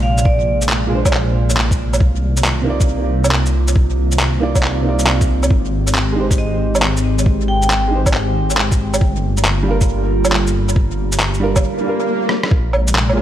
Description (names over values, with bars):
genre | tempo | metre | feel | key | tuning
future garage | 137 BPM | 4/4 | swing 65% on 16ths | C minor | A4 = 438 Hz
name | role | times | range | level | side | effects
vibraphone with hard mallets | melody | 0.0-0.4, 6.4-7.9 s | D5 to G5 | -24 LUFS | equal | tape echo
dark upright piano | accompaniment | 0.0-13.2 s | Bb2 to D5 | -23 LUFS | right 3 dB | sidechain pumping, dub echo
warbly tape-like pad | sustained chords | 0.0-13.2 s | C3 to D5 | -24 LUFS | equal | chorus, built-in reverb, sidechain pumping
dark detuned saw bass | bass | 0.0-13.2 s | G1 to C2 | -18 LUFS | equal | sidechain pumping
electronic shaker, handclaps, woodblock and rim click | drums | 0.2-13.2 s | none | -19 LUFS | equal | overdrive, studio reverb, tape echo
electronic kick drum | drums | 0.3-12.6 s | none | -16 LUFS | equal | studio reverb
swell | sound effects | 11.8-12.5 s | none | -23 LUFS | left 3 dB | none
room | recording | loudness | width
light reverb | echo-heavy mix | -14 LUFS | side -11 dB against mid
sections
0.0-12.5 A section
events
swell 11.8-12.5; drum fill 12.3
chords
0.0 Bb9; 2.0 Cm11; 5.5 Abmaj7; 9.0 Gm7; 12.5 Bb9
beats
| 0.25 0.69 1.13 1.57 | 2.01 2.44 2.88 3.32 | 3.76 4.20 4.63 5.07 | 5.51 5.95 6.38 6.82 | 7.26 7.70 8.14 8.57 | 9.01 9.45 9.89 10.33 | 10.77 11.20 11.64 12.08 | 12.52 12.96